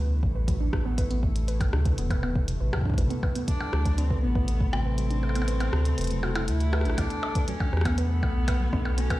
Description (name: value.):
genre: IDM.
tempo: 120 BPM.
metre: 4/4.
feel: straight.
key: unclear.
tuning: A4 = 439 Hz.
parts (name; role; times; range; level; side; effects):
glassy FM pad; sustained chords; 0.0-9.2 s; C3 to A4; -35 LUFS; left 2 dB; ensemble chorus, built-in reverb.
warbly dusty pluck; arpeggios; 0.0-9.2 s; F#3 to B4; -35 LUFS; right 2 dB; chorus, tape echo.
round analog bass; bass; 0.0-9.2 s; E1 to E2; -26 LUFS; equal; none.
electronic kick drum; drums; 0.2-9.2 s; none; -27 LUFS; equal; none.
glitchy drum kit; drums; 0.5-9.2 s; hi-hat, percussion blips, rim click; -34 LUFS; left 1 dB; none.
dark cello; melody; 3.5-9.2 s; B3 to E4; -34 LUFS; left 1 dB; ping-pong delay.
room: digital ambience.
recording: played on a big sound system in a bare room, stone room reverb.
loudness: -24 LUFS.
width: side -16 dB against mid.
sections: 0.0-7.0 A section; 7.0-9.2 B section.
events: kick drops out 5.0-7.0; band accent 6.8.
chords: 0.0 Am7; 7.0 Bm7.